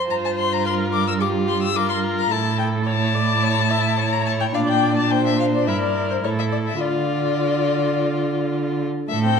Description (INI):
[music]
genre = quick classical-period movement for string quartet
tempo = 107 BPM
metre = 4/4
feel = straight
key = D minor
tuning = A4 = 440 Hz
[part]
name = dark violin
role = melody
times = 0.0-9.4 s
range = C5 to E6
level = -23 LUFS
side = left 9 dB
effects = none
[part]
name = warm viola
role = accompaniment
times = 0.0-9.4 s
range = A3 to E5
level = -26 LUFS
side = right 3 dB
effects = none
[part]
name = warm violin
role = second line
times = 0.1-9.4 s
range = D4 to A4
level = -26 LUFS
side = left 5 dB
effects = none
[part]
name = rich cello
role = bass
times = 0.1-9.4 s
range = G2 to D3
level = -23 LUFS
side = right 5 dB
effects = none
[sound]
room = wet recital hall reverb, RT60 1.7 s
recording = dark, warm production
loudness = -18 LUFS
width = side -6 dB against mid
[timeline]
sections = 0.0-9.1 A section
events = none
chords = 0.1 Gm7; 2.3 A; 4.5 Bb; 5.7 Em7b5/G; 6.2 A5; 6.8 Dm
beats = | 0.10 0.65 1.21 1.76 | 2.31 2.87 3.42 3.99 | 4.55 5.11 5.67 6.24 | 6.81 7.39 7.96 8.53 | 9.10